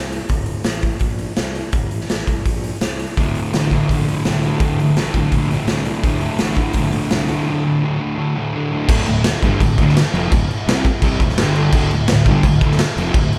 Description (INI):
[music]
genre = garage rock duo or trio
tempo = 168 BPM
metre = 4/4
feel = straight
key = D minor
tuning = A4 = 442 Hz
[part]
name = fuzz fingered electric bass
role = bass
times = 0.0-13.3 s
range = D1 to C2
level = -28 LUFS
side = equal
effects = overdrive
[part]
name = raw garage drum kit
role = drums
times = 0.1-13.4 s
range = crash cymbal, hi-hat, kick drum, snare drum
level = -21 LUFS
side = equal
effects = none
[part]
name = fuzz guitar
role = riff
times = 3.2-13.3 s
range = D2 to C4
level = -20 LUFS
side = equal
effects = distortion
[sound]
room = light reverb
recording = band playing live in one room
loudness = -18 LUFS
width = mono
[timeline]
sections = 0.0-8.9 A section; 8.9-13.4 B section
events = none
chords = 0.0 D5; 8.9 Dm; 11.4 G5; 11.7 Dm